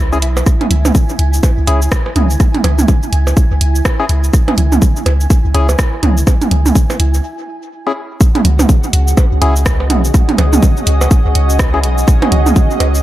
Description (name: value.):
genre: minimal techno.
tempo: 124 BPM.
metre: 4/4.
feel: swing 60% on 16ths.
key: C# minor.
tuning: A4 = 440 Hz.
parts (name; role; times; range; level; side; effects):
punchy sub bass; bass; 0.0-13.0 s; B1 to C#2; -12 LUFS; equal; sidechain pumping.
pulsing gated texture; texture; 0.0-13.0 s; E4 to G#5; -24 LUFS; right 2 dB; chorus, built-in reverb, sidechain pumping.
percussive organ stab; stabs; 0.1-11.8 s; C#4 to G#4; -21 LUFS; left 4 dB; chorus, tape echo.
house drum kit; drums; 0.1-13.0 s; cabasa, hi-hat, rim click; -21 LUFS; right 1 dB; tape echo.
electronic percussion blips and toms; percussion; 0.4-12.9 s; none; -17 LUFS; right 3 dB; dub echo.
electronic kick drum; drums; 0.5-12.7 s; none; -11 LUFS; equal; none.
granular cloud pad; texture; 8.8-13.0 s; C#4 to D#5; -21 LUFS; equal; built-in reverb, sidechain pumping.
room: light reverb.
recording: echo-heavy mix.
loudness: -10 LUFS.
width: side -14 dB against mid.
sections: 0.0-8.2 A section; 8.2-13.0 B section.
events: break 7.2-8.2; drop 8.2-13.0.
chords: 0.0 C#m; 8.2 C#5.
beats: | 0.46 0.95 1.43 1.92 | 2.40 2.88 3.37 3.85 | 4.33 4.82 5.30 5.79 | 6.27 6.75 7.24 7.72 | 8.21 8.69 9.17 9.66 | 10.14 10.62 11.11 11.59 | 12.08 12.56.